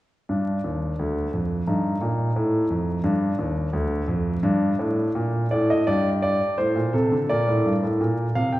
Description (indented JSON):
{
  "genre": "classical-period piano sonatina",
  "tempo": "86 BPM",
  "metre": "2/4",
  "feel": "rubato",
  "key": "G minor",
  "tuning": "A4 = 439 Hz",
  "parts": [
    { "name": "clear grand piano", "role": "solo", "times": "0.3-8.6 s", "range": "D2 to G5", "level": "-21 LUFS", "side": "equal", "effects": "none" }
  ],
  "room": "wet recital hall reverb, RT60 1.6 s",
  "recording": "heard from further back in the room, vinyl crackle",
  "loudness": "-21 LUFS",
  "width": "side -16 dB against mid",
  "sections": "0.3-5.9 A section; 5.9-8.6 B section",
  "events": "none",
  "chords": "0.3 G5; 1.7 F9; 3.0 G5; 4.4 D5/G; 5.9 N.C.; 6.6 D5/A; 7.3 Gm"
}